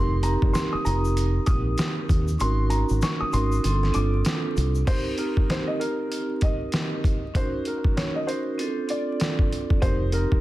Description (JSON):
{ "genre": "hip hop, boom-bap hip-hop", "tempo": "97 BPM", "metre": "4/4", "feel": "swing 61% on 16ths", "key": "unclear", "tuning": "A4 = 440 Hz", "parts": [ { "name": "warm upright piano", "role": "melody", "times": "0.0-10.4 s", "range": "Bb4 to Eb6", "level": "-31 LUFS", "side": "left 1 dB", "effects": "high-pass filter, low-pass filter" }, { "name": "vibraphone with medium hard mallets", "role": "accompaniment", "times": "0.0-10.4 s", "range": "C4 to Bb4", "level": "-28 LUFS", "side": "right 2 dB", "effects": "high-pass filter, low-pass filter" }, { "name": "deep dub fingered electric bass", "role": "bass", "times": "0.0-4.8, 9.8-10.4 s", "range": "F1 to Eb2", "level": "-23 LUFS", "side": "equal", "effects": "none" }, { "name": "trip hop sampler-style drum kit", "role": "drums", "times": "0.2-10.4 s", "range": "crash cymbal, hi-hat, kick drum, snare drum", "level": "-25 LUFS", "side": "equal", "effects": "none" }, { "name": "tube shaker", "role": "percussion", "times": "0.2-4.9 s", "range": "none", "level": "-45 LUFS", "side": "left 7 dB", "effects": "none" } ], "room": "studio reverb", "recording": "dense, heavily limited modern master, vinyl crackle", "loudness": "-22 LUFS", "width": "side -16 dB against mid", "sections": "0.0-4.9 A section; 4.9-10.4 B section", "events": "kick muted 2.4-4.9; break 4.9-9.8", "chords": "0.0 F9sus4; 2.4 Ab9sus4; 3.6 G9sus4; 4.9 Cm7; 7.3 Gb6/Db; 8.6 F6/C; 9.8 F9sus4" }